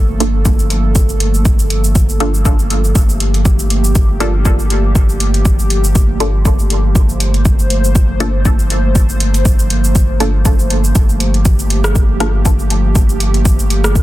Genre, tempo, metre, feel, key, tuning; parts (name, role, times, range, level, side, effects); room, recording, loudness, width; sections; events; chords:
dub techno; 120 BPM; 4/4; swing 56% on 16ths; G minor; A4 = 439 Hz
airy breathy pad; sustained chords; 0.0-14.0 s; F3 to C5; -21 LUFS; right 1 dB; chorus, sidechain pumping
warm sub bass; bass; 0.0-14.0 s; G1; -15 LUFS; equal; sidechain pumping
filtered dub chord stab; stabs; 0.2-12.4 s; Bb3 to A4; -23 LUFS; equal; phaser, sidechain pumping, dub echo
deep house drum kit; drums; 0.2-14.0 s; cabasa, hi-hat, rim click; -21 LUFS; right 1 dB; overdrive
electronic kick drum; drums; 0.5-14.0 s; -12 LUFS; equal; overdrive
little or no reverb; dense, heavily limited modern master; -10 LUFS; side -16 dB against mid
0.0-3.0 A section; 3.0-14.0 A section
filter sweep on synth stab 0.0-3.0
0.0 Gm9